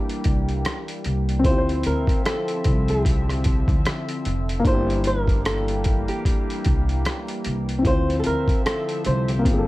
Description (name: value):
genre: lo-fi hip hop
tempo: 75 BPM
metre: 4/4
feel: swing 58% on 16ths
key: G dorian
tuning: A4 = 440 Hz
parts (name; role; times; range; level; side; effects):
- flamenco guitar; melody; 0.0-9.7 s; G4 to C5; -27 LUFS; right 1 dB; tape echo
- dark upright piano; accompaniment; 0.0-9.7 s; Bb3 to C5; -27 LUFS; left 3 dB; cassette tape
- warbly tape-like pad; sustained chords; 0.0-9.7 s; C3 to E5; -31 LUFS; right 1 dB; chorus, built-in reverb
- boom bap sampler-style drum kit; drums; 0.1-9.7 s; hi-hat, kick drum, rim click; -23 LUFS; equal; vintage 12-bit sampler grit
- upright bass; bass; 0.3-9.7 s; F1 to D2; -24 LUFS; equal; none
room: light reverb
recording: vinyl crackle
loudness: -20 LUFS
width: side -18 dB against mid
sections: 0.0-9.7 A section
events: none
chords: 0.0 Gm6; 1.4 Dm9; 4.6 Gm6; 7.8 Dm9